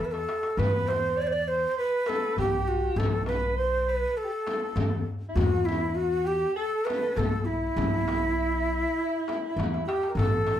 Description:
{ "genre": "Turkish makam ensemble", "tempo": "100 BPM", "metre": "4/4", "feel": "straight", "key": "E makam ussak", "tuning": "A4 = 439 Hz", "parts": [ { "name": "breathy ney", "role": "melody", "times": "0.0-10.6 s", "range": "E4 to D5", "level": "-28 LUFS", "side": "equal", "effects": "none" }, { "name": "mellow soprano saxophone", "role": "second line", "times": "0.0-10.6 s", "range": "E4 to D5", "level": "-32 LUFS", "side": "right 2 dB", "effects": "none" }, { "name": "upright bass", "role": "bass", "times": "0.0-10.6 s", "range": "A1 to E2", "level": "-31 LUFS", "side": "equal", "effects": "none" }, { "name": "darbuka", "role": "percussion", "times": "0.1-10.6 s", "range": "none", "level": "-32 LUFS", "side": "left 1 dB", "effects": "none" }, { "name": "frame drum", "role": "percussion", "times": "0.6-10.6 s", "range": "none", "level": "-33 LUFS", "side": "left 2 dB", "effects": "none" } ], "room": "wet small room reverb, RT60 0.5 s", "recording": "band playing live in one room", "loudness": "-24 LUFS", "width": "side -10 dB against mid", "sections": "0.0-10.2 A section", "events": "drum fill 0.0-0.6, 9.6-10.2", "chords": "none" }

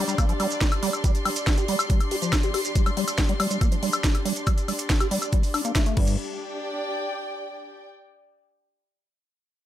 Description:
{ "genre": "psychedelic trance", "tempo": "140 BPM", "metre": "4/4", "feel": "straight", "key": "unclear", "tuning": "A4 = 441 Hz", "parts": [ { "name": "liquid acid bass", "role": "riff", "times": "0.0-6.2 s", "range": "F3 to G4", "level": "-29 LUFS", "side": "moving between left 6 dB and right 8 dB", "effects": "chorus, auto-pan, cassette tape, sidechain pumping, dub echo" }, { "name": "dark studio string section", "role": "texture", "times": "0.0-7.9 s", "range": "D4 to C6", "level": "-31 LUFS", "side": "left 1 dB", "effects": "sidechain pumping" }, { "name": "drum and bass drum kit", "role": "drums", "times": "0.1-6.1 s", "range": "crash cymbal, hi-hat, snare drum, woodblock", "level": "-28 LUFS", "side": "left 1 dB", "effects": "overdrive" }, { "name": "maracas", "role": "percussion", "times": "0.1-6.2 s", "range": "none", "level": "-35 LUFS", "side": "right 5 dB", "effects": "none" }, { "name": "electronic kick drum", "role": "drums", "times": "0.2-6.1 s", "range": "none", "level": "-22 LUFS", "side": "equal", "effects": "overdrive" }, { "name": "fat analog bass", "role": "bass", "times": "6.0-6.2 s", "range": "G1", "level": "-28 LUFS", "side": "equal", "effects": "none" } ], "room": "light reverb, digital ambience", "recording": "none", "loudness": "-22 LUFS", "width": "side -12 dB against mid", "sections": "0.0-6.2 A section; 6.2-7.9 B section", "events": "filter sweep on acid bass 0.0-6.2", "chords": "0.0 G5" }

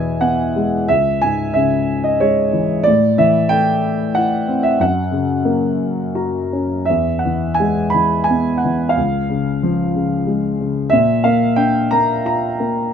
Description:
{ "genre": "classical, lyrical solo piano", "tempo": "91 BPM", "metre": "3/4", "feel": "rubato", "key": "E lydian", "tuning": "A4 = 440 Hz", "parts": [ { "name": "dark grand piano", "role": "solo", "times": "0.0-12.9 s", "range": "C#2 to B5", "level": "-14 LUFS", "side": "equal", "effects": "none" } ], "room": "light reverb", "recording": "close, detailed microphones", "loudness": "-14 LUFS", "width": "side -8 dB against mid", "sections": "0.0-6.9 A section; 6.9-12.9 B section", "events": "grand piano fill 5.8-6.9", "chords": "0.0 Eadd9; 0.9 C#m; 2.9 Am; 4.8 F#; 6.9 E; 9.0 C#; 10.9 A#" }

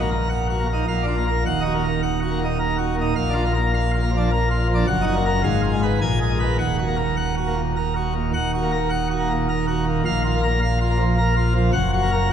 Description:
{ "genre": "classical, organ toccata", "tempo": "105 BPM", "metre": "3/4", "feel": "straight", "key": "Eb minor", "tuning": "A4 = 441 Hz", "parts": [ { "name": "pipe organ, plenum", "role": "solo", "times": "0.0-12.3 s", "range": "Eb1 to Ab5", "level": "-19 LUFS", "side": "equal", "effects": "none" } ], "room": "wet church reverb, RT60 3.7 s", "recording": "minimal, uncompressed stereo recording", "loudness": "-19 LUFS", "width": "side -8 dB against mid", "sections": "0.0-8.3 A section; 8.3-12.3 A section", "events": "none", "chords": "0.0 Ebm/Bb; 0.9 Bb; 1.4 Ebm; 3.2 Bb; 4.9 Ebm/Gb; 5.4 Fdim/Ab; 6.0 Abmadd9/Bb; 6.6 Ebm; 10.0 Bb5; 11.7 Gb" }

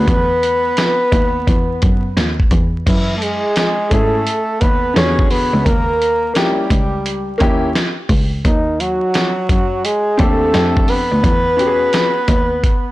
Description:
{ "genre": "hip hop, jazz-hop", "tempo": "86 BPM", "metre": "4/4", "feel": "swing 65% on 16ths", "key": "unclear", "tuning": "A4 = 440 Hz", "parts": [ { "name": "breathy flugelhorn", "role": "melody", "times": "0.0-12.9 s", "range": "D#4 to C#5", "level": "-18 LUFS", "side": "left 1 dB", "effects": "tape echo" }, { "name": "breathy tenor saxophone", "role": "second line", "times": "0.0-12.9 s", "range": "D#3 to C#4", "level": "-22 LUFS", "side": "right 3 dB", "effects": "none" }, { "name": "clear concert grand piano", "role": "accompaniment", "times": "0.0-12.2 s", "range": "D3 to A4", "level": "-20 LUFS", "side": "left 2 dB", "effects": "none" }, { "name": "warm cello", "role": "bass", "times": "0.0-12.6 s", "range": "C#2 to G#2", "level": "-19 LUFS", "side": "equal", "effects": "transformer saturation" }, { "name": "dusty soul sampler-style drum kit", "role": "drums", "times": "0.1-12.8 s", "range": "crash cymbal, hi-hat, kick drum, snare drum", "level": "-17 LUFS", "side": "equal", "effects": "none" } ], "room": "small room ambience", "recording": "blown-out, overdriven recording, vinyl crackle, overdrive", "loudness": "-13 LUFS", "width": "side -17 dB against mid", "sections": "0.0-2.9 A section; 2.9-12.9 A section", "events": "break 0.1-2.9", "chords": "0.1 E5; 2.9 F#m9; 5.0 E9; 5.7 D#7b9; 8.4 D#dim7; 10.5 F6; 11.2 E6" }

